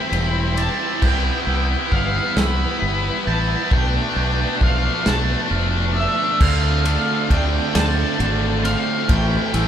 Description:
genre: post-rock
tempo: 45 BPM (dotted quarters)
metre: 6/8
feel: straight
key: unclear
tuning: A4 = 442 Hz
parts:
  - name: octave-fuzz lead guitar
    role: melody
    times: 0.0-9.7 s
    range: E5 to B5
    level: -25 LUFS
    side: right 1 dB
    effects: distortion
  - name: dark symphonic string section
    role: sustained chords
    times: 0.0-9.7 s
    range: E3 to G5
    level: -33 LUFS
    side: left 1 dB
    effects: none
  - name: glockenspiel with hard plastic mallets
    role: arpeggios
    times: 0.0-9.7 s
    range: D6 to A6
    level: -32 LUFS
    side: right 7 dB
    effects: none
  - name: twelve-string electric guitar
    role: arpeggios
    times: 0.0-9.7 s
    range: A2 to E4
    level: -30 LUFS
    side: left 2 dB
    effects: none
  - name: crunchy overdriven guitar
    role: riff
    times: 0.0-9.7 s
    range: A2 to E4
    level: -26 LUFS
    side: right 9 dB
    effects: none
  - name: tight distorted guitar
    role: riff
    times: 0.0-9.7 s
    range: A2 to A4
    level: -25 LUFS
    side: left 9 dB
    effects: distortion
  - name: growling fingered electric bass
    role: bass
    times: 0.1-9.7 s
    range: E1 to D2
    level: -21 LUFS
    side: equal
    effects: overdrive
  - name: loose indie drum kit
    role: drums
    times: 0.1-9.7 s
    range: crash cymbal, kick drum, ride cymbal, snare drum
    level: -23 LUFS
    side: equal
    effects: none
room: moderate large studio reverb, RT60 1.1 s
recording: band playing live in one room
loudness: -17 LUFS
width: side -9 dB against mid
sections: 0.0-6.4 A section; 6.4-9.7 B section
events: build-up 0.0-6.4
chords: 0.0 Am7; 1.0 Cmaj7; 3.7 Bm7b5; 6.4 Dm7; 9.1 Am7

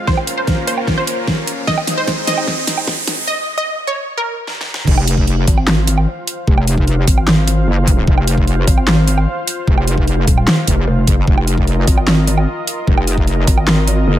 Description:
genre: heavy wobble dubstep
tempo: 150 BPM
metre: 4/4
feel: half-time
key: F minor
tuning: A4 = 442 Hz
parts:
  - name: supersaw pad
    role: sustained chords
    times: 0.0-14.2 s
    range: Ab3 to F5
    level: -25 LUFS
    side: equal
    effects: sidechain pumping, low-pass filter
  - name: riser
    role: sound effects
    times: 0.0-3.3 s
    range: none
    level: -24 LUFS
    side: right 3 dB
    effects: none
  - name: wide unison pluck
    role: melody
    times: 0.1-4.8 s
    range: Bb4 to Eb5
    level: -21 LUFS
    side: right 1 dB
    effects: dub echo
  - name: dubstep drum kit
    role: drums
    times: 0.1-14.0 s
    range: crash cymbal, handclaps, hi-hat, snare drum, woodblock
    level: -18 LUFS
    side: right 1 dB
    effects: overdrive
  - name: electronic kick drum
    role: drums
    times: 0.1-13.6 s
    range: none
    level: -15 LUFS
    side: equal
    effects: overdrive
  - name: wobble bass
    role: bass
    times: 4.9-14.2 s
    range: F1 to Gb1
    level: -15 LUFS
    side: equal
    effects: chorus, overdrive
  - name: pulsing pluck wobble bass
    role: bass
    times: 5.5-14.1 s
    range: Eb1 to Ab1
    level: -15 LUFS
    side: equal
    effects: chorus, overdrive
room: digital ambience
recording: high-pass filter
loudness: -13 LUFS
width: side -12 dB against mid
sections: 0.0-4.9 A section; 4.9-14.2 B section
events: build-up 0.0-4.9; drum fill 0.0-3.3, 4.5-4.9; riser 0.0-3.3; filter sweep 0.0-4.9; break 3.3-4.9; drop 4.9-14.2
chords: 0.1 Bbm; 1.7 Ab; 3.3 N.C.; 4.9 F5

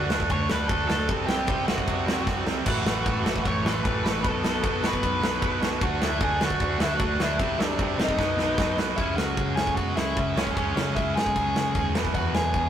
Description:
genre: punk rock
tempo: 152 BPM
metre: 4/4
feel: straight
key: unclear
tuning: A4 = 440 Hz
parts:
  - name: bluesy overdriven lead guitar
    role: melody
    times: 0.0-12.7 s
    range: C#4 to C#6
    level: -29 LUFS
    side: left 1 dB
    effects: distortion, tape echo
  - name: overdriven electric guitar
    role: riff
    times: 0.0-12.7 s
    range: E2 to D4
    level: -33 LUFS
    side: left 6 dB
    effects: none
  - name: tight distorted guitar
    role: riff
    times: 0.0-12.7 s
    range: E2 to D4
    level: -28 LUFS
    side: right 5 dB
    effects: distortion
  - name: overdriven picked electric bass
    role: bass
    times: 0.0-12.7 s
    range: E1 to B2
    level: -32 LUFS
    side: left 1 dB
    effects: none
  - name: big rock drum kit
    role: drums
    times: 0.1-12.6 s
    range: crash cymbal, kick drum, ride cymbal, snare drum, splash cymbal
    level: -27 LUFS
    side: equal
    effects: none
room: light reverb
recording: rough rehearsal-room recording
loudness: -22 LUFS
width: side -9 dB against mid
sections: 0.0-9.0 A section; 9.0-12.7 B section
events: drum fill 2.3-2.7, 8.2-9.0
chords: 0.0 D5; 1.1 C5; 2.7 A; 4.2 B5; 5.8 D; 7.4 C; 8.2 B; 9.0 C#m; 11.9 E

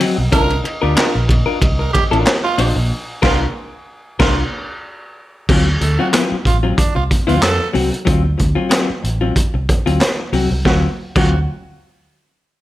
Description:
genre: funk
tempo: 93 BPM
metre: 4/4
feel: swing 56% on 16ths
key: unclear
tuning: A4 = 444 Hz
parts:
  - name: vintage hollow-body jazz guitar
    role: accompaniment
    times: 0.0-11.3 s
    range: F#3 to C5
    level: -20 LUFS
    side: left 4 dB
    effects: none
  - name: raw garage drum kit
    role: drums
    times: 0.0-11.3 s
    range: crash cymbal, handclaps, hi-hat, kick drum, ride cymbal, snare drum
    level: -17 LUFS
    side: equal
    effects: none
  - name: fingered electric bass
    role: bass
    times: 0.2-11.5 s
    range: A1 to E#2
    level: -18 LUFS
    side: equal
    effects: none
  - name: growling tenor saxophone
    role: second line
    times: 0.3-11.4 s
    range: D4 to Bb4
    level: -22 LUFS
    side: right 4 dB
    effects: none
room: light reverb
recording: none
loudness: -14 LUFS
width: side -15 dB against mid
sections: 0.0-5.5 A section; 5.5-10.7 B section; 10.7-12.6 C section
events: band accent 2.9-5.5; break 4.8-5.5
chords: 0.3 C9sus4; 5.5 D7#9

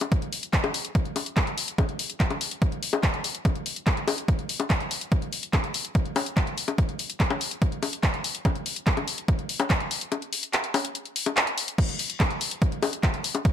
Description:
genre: trance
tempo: 144 BPM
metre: 4/4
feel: straight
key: none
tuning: none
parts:
  - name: drum and bass drum kit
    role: drums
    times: 0.0-13.5 s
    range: bongos, crash cymbal, handclaps, hi-hat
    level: -27 LUFS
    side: left 3 dB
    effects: none
  - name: electronic kick drum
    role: drums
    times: 0.1-13.5 s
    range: none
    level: -24 LUFS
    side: equal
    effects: overdrive
room: light reverb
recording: none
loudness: -24 LUFS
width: side -9 dB against mid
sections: 0.0-11.8 A section; 11.8-13.5 B section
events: kick drops out 10.1-11.8; drop 11.8-13.5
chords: none

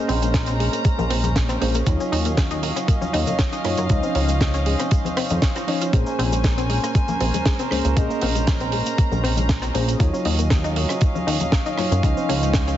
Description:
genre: nu-disco, nu disco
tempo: 118 BPM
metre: 4/4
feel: straight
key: Bb minor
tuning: A4 = 438 Hz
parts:
  - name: mellow tine electric piano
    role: accompaniment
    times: 0.0-12.8 s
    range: F3 to Eb5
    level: -27 LUFS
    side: equal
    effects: medium stereo tremolo, sidechain pumping, tape echo
  - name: dark chamber string section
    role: sustained chords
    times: 0.0-12.8 s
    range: Gb3 to Bb5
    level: -27 LUFS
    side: right 1 dB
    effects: sidechain pumping
  - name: analog pluck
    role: arpeggios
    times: 0.0-12.8 s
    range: Ab3 to F4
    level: -29 LUFS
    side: left 3 dB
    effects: chorus, sidechain pumping, tape echo
  - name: chorused synth bass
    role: bass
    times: 0.1-12.8 s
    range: Bb1 to Gb2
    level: -22 LUFS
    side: equal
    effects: none
  - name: tight funk drum kit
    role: drums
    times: 0.1-12.8 s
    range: cabasa, hi-hat, rim click, snare drum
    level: -28 LUFS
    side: right 2 dB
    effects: none
  - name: electronic kick drum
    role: drums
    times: 0.3-12.7 s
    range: none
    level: -19 LUFS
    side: equal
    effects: overdrive
  - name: congas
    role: percussion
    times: 1.0-11.5 s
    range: none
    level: -29 LUFS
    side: left 3 dB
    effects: none
room: light reverb, studio ambience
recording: heavily compressed radio sound, nothing above 7.8 kHz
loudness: -18 LUFS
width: side -12 dB against mid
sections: 0.0-12.8 A section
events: none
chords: 0.0 Bbm9; 1.9 Ebm9; 3.9 Dbmaj9; 5.9 Bbm9; 10.0 Ebm9; 12.0 Dbmaj9

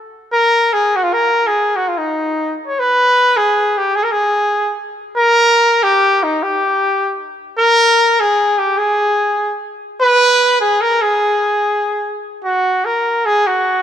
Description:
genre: mexican folk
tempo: free time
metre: none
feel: none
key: G# harmonic minor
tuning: A4 = 440 Hz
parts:
  - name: clear trumpet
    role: solo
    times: 0.3-13.8 s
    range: Eb4 to Db5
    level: -12 LUFS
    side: equal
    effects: none
room: moderate concert hall reverb, RT60 2.3 s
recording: dark, warm production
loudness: -12 LUFS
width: side -9 dB against mid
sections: 0.0-2.8 A section; 2.8-12.4 B section; 12.4-13.8 C section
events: none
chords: none

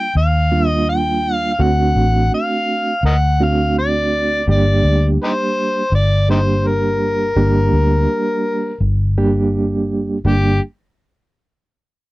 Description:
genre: straight-eighth soul blues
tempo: 83 BPM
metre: 4/4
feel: straight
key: G minor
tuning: A4 = 440 Hz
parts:
  - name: overdriven harmonica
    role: melody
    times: 0.0-10.6 s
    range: Eb4 to G5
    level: -19 LUFS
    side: left 1 dB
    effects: none
  - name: reed electric piano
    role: accompaniment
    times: 0.0-10.6 s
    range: G3 to G4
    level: -19 LUFS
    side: right 3 dB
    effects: overdrive, fast tremolo
  - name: vintage muted fingered electric bass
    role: bass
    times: 0.2-10.6 s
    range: G1 to Eb2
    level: -16 LUFS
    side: left 1 dB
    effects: none
room: little or no reverb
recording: dry, close 1970s-style studio recording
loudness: -14 LUFS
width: side -19 dB against mid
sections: 0.0-10.3 A section; 10.3-12.1 B section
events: none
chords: 0.0 Ebmaj7; 1.6 D7; 4.5 Gm

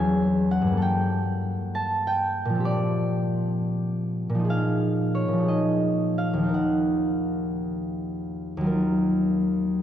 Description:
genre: classical, solo harp piece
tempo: 55-68 BPM (dotted quarters)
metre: 6/8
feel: rubato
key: unclear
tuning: A4 = 440 Hz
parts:
  - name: concert harp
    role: solo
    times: 0.0-9.8 s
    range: Eb2 to A5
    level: -22 LUFS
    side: equal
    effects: none
room: wet church reverb, RT60 3.3 s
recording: dark, warm production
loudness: -22 LUFS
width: side -10 dB against mid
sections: 0.0-8.7 A section; 8.7-9.8 A section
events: none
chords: 0.0 E69; 0.8 Gmadd9; 2.6 Bb69; 4.5 Bb7sus4; 6.5 Ebmadd9

